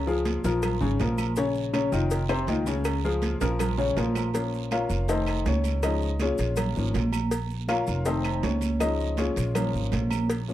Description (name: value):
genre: latin, salsa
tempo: 161 BPM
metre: 4/4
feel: straight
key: Bb minor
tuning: A4 = 444 Hz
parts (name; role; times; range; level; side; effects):
- upright bass; bass; 0.0-10.5 s; F1 to Db2; -28 LUFS; right 1 dB; none
- clear concert grand piano; accompaniment; 0.1-10.5 s; C3 to F5; -28 LUFS; left 4 dB; none
- congas; percussion; 0.1-10.5 s; none; -32 LUFS; right 2 dB; none
- maracas; percussion; 0.1-10.5 s; none; -46 LUFS; left 7 dB; none
- cowbell; percussion; 0.3-10.5 s; none; -35 LUFS; left 3 dB; none
- guiro; percussion; 0.3-10.5 s; none; -42 LUFS; right 17 dB; none
- timbales and agogo bells; percussion; 0.3-10.5 s; none; -36 LUFS; right 14 dB; none
- claves; percussion; 0.6-10.3 s; none; -42 LUFS; left 6 dB; none
room: small room ambience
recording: dry, close 1970s-style studio recording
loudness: -24 LUFS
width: side -13 dB against mid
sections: 0.0-4.3 A section; 4.3-10.5 B section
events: drum fill 3.4-4.3; grand piano solo 4.3-10.5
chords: 0.0 Db; 0.6 Bbm; 2.1 F5; 2.9 Db; 3.6 Bbm; 5.1 F7; 5.8 Db; 6.6 Bbm; 8.1 F7; 8.8 Db; 9.6 Bbm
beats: 0.26 0.63 1.00 | 1.37 1.74 2.11 2.48 | 2.86 3.23 3.60 3.97 | 4.34 4.71 5.09 5.46 | 5.83 6.20 6.58 6.95 | 7.32 7.69 8.06 8.44 | 8.81 9.18 9.55 9.93 | 10.30